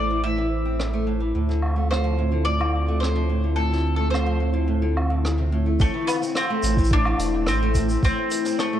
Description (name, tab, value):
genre	folktronica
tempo	108 BPM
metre	4/4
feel	straight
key	A minor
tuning	A4 = 440 Hz
part	bowl-back mandolin	melody	0.0-8.8 s	A3 to E5	-27 LUFS	equal	tape echo
part	warbly tape-like pad	sustained chords	0.0-8.8 s	D3 to C5	-30 LUFS	right 2 dB	chorus, built-in reverb
part	picked old ladder-braced acoustic guitar	arpeggios	0.0-8.8 s	A2 to C4	-27 LUFS	left 2 dB	tape echo
part	warm sub bass	bass	0.0-8.1 s	E1 to D2	-23 LUFS	equal	none
part	jazz brush drum kit	drums	0.8-8.7 s	hi-hat, rim click, shaker, woodblock	-30 LUFS	equal	none
part	electronic kick drum	drums	5.8-8.1 s	none	-22 LUFS	equal	none
room	light reverb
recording	dark, warm production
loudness	-20 LUFS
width	side -10 dB against mid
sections	0.0-5.8 A section; 5.8-8.8 B section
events	filter sweep on drum 0.0-5.8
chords	0.0 Am; 1.4 Dm7; 5.8 Am